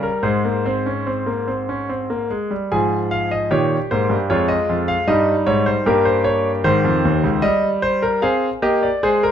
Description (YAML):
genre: classical, baroque-style 4-part fugue for grand piano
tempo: 75 BPM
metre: 3/4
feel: straight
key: Ab major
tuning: A4 = 440 Hz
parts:
  - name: bright concert grand piano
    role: solo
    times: 0.0-9.3 s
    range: Db2 to Ab5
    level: -16 LUFS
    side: equal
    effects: none
room: moderate large studio reverb, RT60 1.3 s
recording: dark, warm production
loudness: -16 LUFS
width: side -9 dB against mid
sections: 0.0-2.7 A section; 2.7-9.3 B section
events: none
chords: 0.2 Ab; 4.3 Fm7; 5.1 Eb/G; 6.7 Ab; 7.4 Eb/G